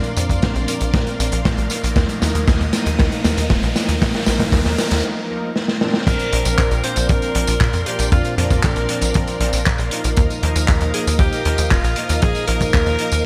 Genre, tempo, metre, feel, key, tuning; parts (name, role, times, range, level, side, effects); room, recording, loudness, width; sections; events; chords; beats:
italo disco; 117 BPM; 4/4; straight; A4 = 440 Hz
string machine, full ensemble; sustained chords; 0.0-13.3 s; Bb4 to Eb6; -31 LUFS; equal; ensemble chorus
analog synth brass; stabs; 0.0-13.3 s; Bb2 to Bb4; -28 LUFS; equal; chorus, digital delay
tight sequencer bass; bass; 0.0-13.2 s; Eb1 to Bb2; -23 LUFS; equal
vintage drum kit; drums; 0.0-13.2 s; crash cymbal, handclaps, hi-hat, snare drum, tambourine; -24 LUFS; equal; gated reverb
riser; sound effects; 1.4-5.0 s; -33 LUFS; equal
kick drum; drums; 0.3-12.8 s; -22 LUFS; equal
bright alto saxophone; melody; 6.1-13.3 s; F4 to C5; -26 LUFS; equal; digital delay
moderate lush hall reverb, RT60 1.8 s, small room ambience; bright 1980s-style digital production; -18 LUFS; mono
0.0-6.1 A section; 6.1-13.3 B section
drum fill 0.0-5.0, 5.6-6.1; filter sweep on analog polysynth 0.0-6.1; riser 1.4-5.0; break 5.0-6.1
0.0 Bbadd9; 2.0 Ebsus2; 6.1 Bbadd9; 10.2 Ebsus2
0.43 0.94 1.45 | 1.97 2.48 2.99 3.50 | 4.02 4.53 5.04 5.55 | 6.07 6.58 7.09 7.61 | 8.12 8.63 9.14 9.66 | 10.17 10.68 11.20 11.71 | 12.22 12.73 13.25